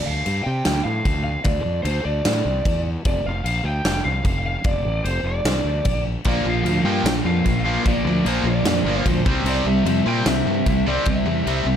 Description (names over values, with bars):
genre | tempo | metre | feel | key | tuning
hard rock | 150 BPM | 4/4 | straight | D minor | A4 = 440 Hz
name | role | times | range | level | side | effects
lead guitar through a small cranked amp | melody | 0.0-11.8 s | C5 to G5 | -26 LUFS | left 1 dB | overdrive
fuzz fingered electric bass | bass | 0.1-11.8 s | F1 to C3 | -24 LUFS | equal | overdrive
huge arena drum kit | drums | 0.3-11.6 s | crash cymbal, kick drum, snare drum | -24 LUFS | equal | none
cranked stack guitar | riff | 6.3-11.8 s | Bb2 to C4 | -25 LUFS | left 8 dB | overdrive
distorted electric guitar | riff | 6.3-11.8 s | Bb2 to C4 | -26 LUFS | left 3 dB | distortion
high-gain distorted guitar | riff | 6.3-11.8 s | Bb2 to C4 | -24 LUFS | right 9 dB | distortion
room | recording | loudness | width
light reverb | none | -18 LUFS | side -9 dB against mid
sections
0.0-11.8 A section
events
none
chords
0.0 Dm; 3.1 N.C.; 6.3 Bb; 9.3 C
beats
0.26 0.65 1.05 | 1.45 1.85 2.25 2.65 | 3.05 3.45 3.85 4.25 | 4.65 5.05 5.45 5.86 | 6.26 6.66 7.06 7.46 | 7.86 8.26 8.66 9.06 | 9.46 9.87 10.27 10.67 | 11.07 11.47